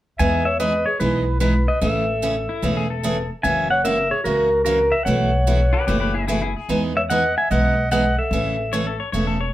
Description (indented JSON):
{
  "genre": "country, western swing",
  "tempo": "148 BPM",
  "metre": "4/4",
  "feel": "swing 66% on 8ths",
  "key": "E major",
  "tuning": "A4 = 443 Hz",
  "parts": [
    { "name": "pedal steel guitar", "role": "melody", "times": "0.2-9.0 s", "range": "A#4 to G#5", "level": "-21 LUFS", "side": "equal", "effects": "none" },
    { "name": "clear clarinet", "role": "second line", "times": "0.2-9.0 s", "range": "E4 to E5", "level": "-26 LUFS", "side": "right 1 dB", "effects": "none" },
    { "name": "picked steel-string acoustic guitar", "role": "accompaniment", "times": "0.2-9.4 s", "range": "B2 to G#4", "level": "-24 LUFS", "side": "right 1 dB", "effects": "none" },
    { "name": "upright bass", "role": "bass", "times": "0.2-9.5 s", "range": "E1 to E2", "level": "-23 LUFS", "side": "equal", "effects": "none" },
    { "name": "pedal steel guitar", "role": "second line", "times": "2.5-9.5 s", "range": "E4 to C#5", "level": "-27 LUFS", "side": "left 5 dB", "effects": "none" }
  ],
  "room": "wet small room reverb, RT60 0.5 s",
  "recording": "band playing live in one room",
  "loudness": "-18 LUFS",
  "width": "side -14 dB against mid",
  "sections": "0.2-9.5 A section",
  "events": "none",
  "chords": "0.2 Emaj7; 1.8 Amaj7; 3.4 F#7; 5.1 B9sus4; 6.7 Emaj9; 8.3 Amaj7",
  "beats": "| 0.19 0.60 1.00 1.41 | 1.81 2.22 2.63 3.03 | 3.44 3.85 4.25 4.66 | 5.07 5.47 5.88 6.29 | 6.69 7.10 7.51 7.91 | 8.32 8.73 9.13"
}